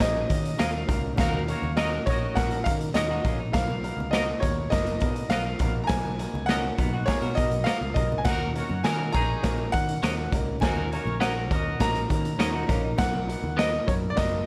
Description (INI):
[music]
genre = uptempo 1960s-style soul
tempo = 102 BPM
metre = 4/4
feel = straight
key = unclear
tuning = A4 = 439 Hz
[part]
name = clear baby grand piano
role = melody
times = 0.0-14.5 s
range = C#5 to A#5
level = -32 LUFS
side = equal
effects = none
[part]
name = warm horn section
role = second line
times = 0.0-2.6, 8.3-12.1 s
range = C#4 to D#5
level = -36 LUFS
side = equal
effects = none
[part]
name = warm upright piano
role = accompaniment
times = 0.0-14.4 s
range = A#3 to C#5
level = -36 LUFS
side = equal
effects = none
[part]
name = vintage muted picked electric bass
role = bass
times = 0.0-14.4 s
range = F#1 to D#3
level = -33 LUFS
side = equal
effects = none
[part]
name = raw garage drum kit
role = drums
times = 0.0-14.3 s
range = hi-hat, kick drum, snare drum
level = -30 LUFS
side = equal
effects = none
[part]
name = congas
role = percussion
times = 0.0-14.5 s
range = none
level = -42 LUFS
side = equal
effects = none
[part]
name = clean electric guitar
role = stabs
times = 0.6-13.7 s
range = B3 to D#5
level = -34 LUFS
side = equal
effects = lush chorus, slapback echo
[part]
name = semi-hollow electric guitar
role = riff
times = 3.0-8.1, 12.4-13.1 s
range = A#3 to A#4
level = -38 LUFS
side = equal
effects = none
[sound]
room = small room ambience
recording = none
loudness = -26 LUFS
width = mono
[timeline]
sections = 0.0-14.5 A section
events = none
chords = 0.0 D#m7; 3.5 Bmaj7; 8.3 D#m7; 13.0 Bmaj7